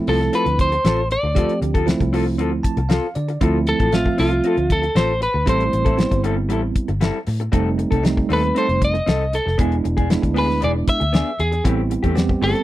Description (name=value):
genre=straight-eighth soul blues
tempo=117 BPM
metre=4/4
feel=straight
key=unclear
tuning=A4 = 441 Hz
part: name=bell-like tine electric piano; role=accompaniment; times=0.0-12.6 s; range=F3 to A5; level=-22 LUFS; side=right 4 dB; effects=fast stereo tremolo
part: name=lightly driven lead guitar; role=melody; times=0.1-12.6 s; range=F4 to E5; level=-20 LUFS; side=equal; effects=slapback echo
part: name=electric guitar through a small old amp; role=stabs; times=0.1-12.6 s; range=E3 to A4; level=-26 LUFS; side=left 4 dB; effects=none
part: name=vintage muted fingered electric bass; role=bass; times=0.1-12.5 s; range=E1 to D3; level=-22 LUFS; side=equal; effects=none
part: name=damped 70s drum kit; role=drums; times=0.1-12.6 s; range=hi-hat, kick drum, snare drum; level=-20 LUFS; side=left 1 dB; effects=none
room=little or no reverb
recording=dry, close 1970s-style studio recording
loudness=-16 LUFS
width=side -15 dB against mid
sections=0.0-12.6 A section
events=tine electric piano fill 2.4-3.4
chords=0.0 Dm7; 5.5 Am7; 7.5 F7; 9.6 E7; 11.6 Am7